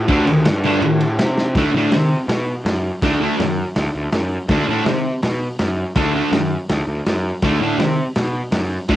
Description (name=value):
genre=garage rock duo or trio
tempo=163 BPM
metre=4/4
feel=straight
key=D mixolydian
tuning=A4 = 440 Hz
part: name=fuzz picked electric bass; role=bass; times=0.0-9.0 s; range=D2 to C3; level=-21 LUFS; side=equal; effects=overdrive
part: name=thick fuzz guitar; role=riff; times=0.1-9.0 s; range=D3 to D4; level=-17 LUFS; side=equal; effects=distortion, cassette tape
part: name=crunchy breakbeat drum kit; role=drums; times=0.1-9.0 s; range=hi-hat, kick drum, ride cymbal, snare drum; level=-21 LUFS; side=equal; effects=cassette tape
room=moderate small room reverb, RT60 0.5 s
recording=home recording on cassette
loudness=-16 LUFS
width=side -13 dB against mid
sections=0.0-1.6 A section; 1.6-9.0 B section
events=drum fill 1.4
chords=0.0 D5; 1.6 D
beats=| 0.09 0.46 0.82 1.19 | 1.56 1.92 2.29 2.66 | 3.02 3.39 3.76 4.12 | 4.49 4.86 5.23 5.59 | 5.96 6.33 6.70 7.06 | 7.43 7.80 8.16 8.53 | 8.90